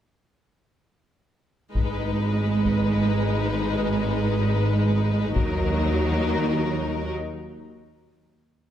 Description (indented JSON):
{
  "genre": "cinematic, epic orchestral film score",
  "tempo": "free time",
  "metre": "none",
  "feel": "none",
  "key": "G# minor",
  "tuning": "A4 = 440 Hz",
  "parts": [
    { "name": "warm symphonic violin section", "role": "second line", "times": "1.7-7.1 s", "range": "D#4", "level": "-31 LUFS", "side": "left 7 dB", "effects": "none" },
    { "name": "warm symphonic violin section", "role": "melody", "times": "1.8-7.1 s", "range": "A#4 to B4", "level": "-32 LUFS", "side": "left 6 dB", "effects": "none" },
    { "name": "clear symphonic viola section", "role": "accompaniment", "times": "1.8-7.1 s", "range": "F#3 to G#3", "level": "-29 LUFS", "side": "right 2 dB", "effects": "none" },
    { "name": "clear symphonic double bass section", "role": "bass", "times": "1.8-7.2 s", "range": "G#1 to D#2", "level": "-27 LUFS", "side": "right 2 dB", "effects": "none" },
    { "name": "warm symphonic cello section", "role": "bass", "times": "1.8-7.2 s", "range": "D#2 to G#2", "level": "-26 LUFS", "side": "right 2 dB", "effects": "none" },
    { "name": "taiko ensemble", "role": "drums", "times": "1.8-6.5 s", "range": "none", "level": "-28 LUFS", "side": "left 2 dB", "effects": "none" }
  ],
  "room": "moderate scoring stage reverb, RT60 1.7 s",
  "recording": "none",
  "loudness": "-21 LUFS",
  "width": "side -10 dB against mid",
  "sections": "1.8-8.7 A section",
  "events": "break 7.2-8.7",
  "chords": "1.8 G#m; 5.4 D#m",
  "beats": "free time"
}